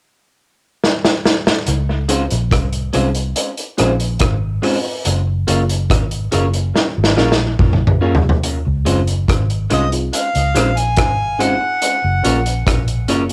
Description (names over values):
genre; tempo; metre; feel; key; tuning
lovers rock reggae; 71 BPM; 4/4; straight; Db major; A4 = 440 Hz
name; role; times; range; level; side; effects
vintage drum kit; drums; 0.8-13.3 s; hi-hat, kick drum, rim click, snare drum, toms; -20 LUFS; equal; cassette tape, tape echo
vintage muted fingered electric bass; bass; 1.7-13.3 s; Gb1 to Db2; -21 LUFS; equal; none
FM electric piano with soft pad layer; accompaniment; 2.1-13.3 s; Bb3 to Ab4; -27 LUFS; equal; chorus, cassette tape, tape echo
electric guitar through a small old amp; stabs; 2.1-13.2 s; Ab3 to Db5; -24 LUFS; equal; cassette tape, tape echo, plate reverb
mellow harmonica; melody; 9.7-12.7 s; Eb5 to Ab5; -22 LUFS; equal; cassette tape, tape echo, plate reverb
room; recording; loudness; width
moderate booth ambience, RT60 0.2 s; home recording on cassette; -17 LUFS; mono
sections
0.0-1.7 A section; 1.7-8.4 B section; 8.4-13.3 C section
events
drum fill 0.8-1.7, 6.7-8.4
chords
0.0 N.C.; 1.7 Dbmaj7; 5.0 Gbmaj7; 8.4 Dbmaj7; 11.8 Gbmaj7